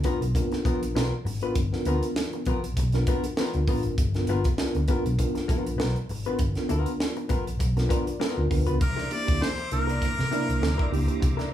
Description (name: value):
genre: funk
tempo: 99 BPM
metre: 4/4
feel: swing 56% on 16ths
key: unclear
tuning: A4 = 441 Hz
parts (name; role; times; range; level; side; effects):
- hollow-body jazz guitar; accompaniment; 0.0-11.5 s; B3 to B4; -32 LUFS; left 5 dB; none
- mellow tine electric piano; stabs; 0.0-11.3 s; A#3 to D5; -30 LUFS; right 1 dB; medium stereo tremolo
- crisp fusion drum kit; drums; 0.0-11.5 s; hi-hat, kick drum, snare drum; -28 LUFS; equal; none
- vintage muted fingered electric bass; bass; 0.2-11.4 s; G1 to C3; -27 LUFS; equal; none
- clear harmonica; melody; 8.8-10.9 s; Bb4 to D5; -30 LUFS; left 2 dB; none
- tonewheel organ; sustained chords; 8.8-11.5 s; C5 to D6; -38 LUFS; right 1 dB; fast rotary speaker, chorus vibrato
room: light reverb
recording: small room ambience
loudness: -23 LUFS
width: side -11 dB against mid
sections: 0.0-8.8 A section; 8.8-11.5 B section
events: tine electric piano fill 7.6-8.8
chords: 0.0 G7#9 (rootless); 8.8 C9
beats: 0.34 0.95 | 1.56 2.16 2.77 3.37 | 3.98 4.58 5.18 5.79 | 6.39 7.00 7.60 8.21 | 8.81 9.41 10.02 10.62 | 11.23